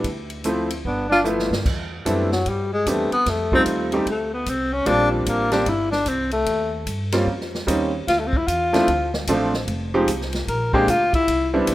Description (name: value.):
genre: jazz, small-group swing and bop.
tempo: 150 BPM.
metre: 4/4.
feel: swing 64% on 8ths.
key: C major.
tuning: A4 = 440 Hz.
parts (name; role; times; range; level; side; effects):
bright upright piano; accompaniment; 0.0-11.7 s; F3 to Ab4; -22 LUFS; right 1 dB; none.
upright bass; bass; 0.0-11.7 s; F1 to G2; -28 LUFS; equal; none.
swinging big-band drum kit; drums; 0.0-11.7 s; crash cymbal, hi-hat, kick drum, ride cymbal, snare drum; -28 LUFS; equal; none.
warm tenor saxophone; melody; 0.9-11.5 s; F3 to Bb4; -21 LUFS; left 2 dB; none.
mellow trumpet; second line; 0.9-1.2 s; B3 to D4; -27 LUFS; right 2 dB; none.
room: light reverb, small room ambience.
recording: rough home demo mix.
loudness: -19 LUFS.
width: side -15 dB against mid.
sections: 0.0-1.7 A section; 1.7-11.7 B section.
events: drum fill 1.2-1.7; tenor saxophone solo 1.7-11.7.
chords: 0.0 Dm7; 0.8 G13; 1.7 Cmaj9; 3.3 F7; 4.9 Bb69; 6.5 Eb13; 8.1 Dm9; 9.7 Fm7; 10.5 Bb9.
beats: | 0.04 0.45 0.85 1.25 | 1.65 2.05 2.46 2.86 | 3.26 3.66 4.06 4.46 | 4.86 5.26 5.67 6.07 | 6.47 6.87 7.27 7.67 | 8.07 8.47 8.87 9.28 | 9.68 10.08 10.48 10.88 | 11.28 11.68.